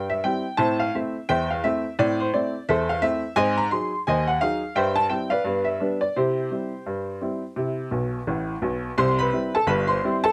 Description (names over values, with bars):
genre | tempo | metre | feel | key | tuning
ragtime piano | 86 BPM | 2/4 | swing 59% on 16ths | C major | A4 = 437 Hz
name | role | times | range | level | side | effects
clear upright piano | solo | 0.0-10.3 s | G1 to C6 | -24 LUFS | equal | none
room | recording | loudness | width
moderate booth ambience, RT60 0.2 s | none | -24 LUFS | mono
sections
0.0-9.0 A section; 9.0-10.3 B section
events
upright piano fill 7.9-9.0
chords
0.0 C; 0.6 Am; 3.4 Ab7; 4.8 C/G; 5.5 G; 6.2 C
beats
| 0.60 1.29 | 1.99 2.69 | 3.38 4.08 | 4.77 5.47 | 6.17 6.88 | 7.58 8.28 | 8.98 9.68